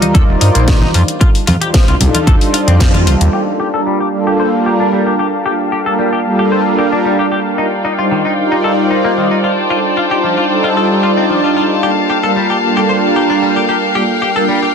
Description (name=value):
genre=nu-disco, nu disco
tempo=113 BPM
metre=4/4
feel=straight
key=G minor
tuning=A4 = 440 Hz
part: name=warm analog pad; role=accompaniment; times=0.0-14.5 s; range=G3 to D5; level=-14 LUFS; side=right 1 dB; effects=chorus, vintage 12-bit sampler grit, sidechain pumping, tape echo
part: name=direct-recorded clean electric guitar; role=riff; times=0.0-14.7 s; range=Eb3 to C5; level=-19 LUFS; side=left 3 dB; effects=lush chorus, low-pass filter, tape echo
part: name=house drum kit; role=drums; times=0.0-3.4 s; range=crash cymbal, hi-hat, snare drum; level=-19 LUFS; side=left 2 dB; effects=low-pass filter on hats, low-pass filter on snare, low-pass filter on cymbals, low-pass filter on room
part: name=congas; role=percussion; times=0.0-3.0 s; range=none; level=-20 LUFS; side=right 1 dB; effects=none
part: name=fat analog bass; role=bass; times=0.1-3.3 s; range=Eb1 to G2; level=-12 LUFS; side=equal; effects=tube saturation, sidechain pumping
part: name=electronic kick drum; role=drums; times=0.1-2.9 s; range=none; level=-10 LUFS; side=equal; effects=none
part: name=rich chamber violin section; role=sustained chords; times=3.3-14.7 s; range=F4 to A5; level=-18 LUFS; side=left 2 dB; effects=sidechain pumping, low-pass filter
room=moderate plate reverb, RT60 2.0 s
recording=dense, heavily limited modern master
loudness=-10 LUFS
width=side -6 dB against mid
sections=0.0-3.3 A section; 3.3-14.7 B section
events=band accent 2.8; filter sweep on clean electric guitar 3.3-14.7; filter sweep on violin section 3.3-14.7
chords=0.0 Ebmaj9; 0.9 F13; 3.3 Gm9; 7.6 Ebmaj9; 9.4 F13; 11.8 Gm9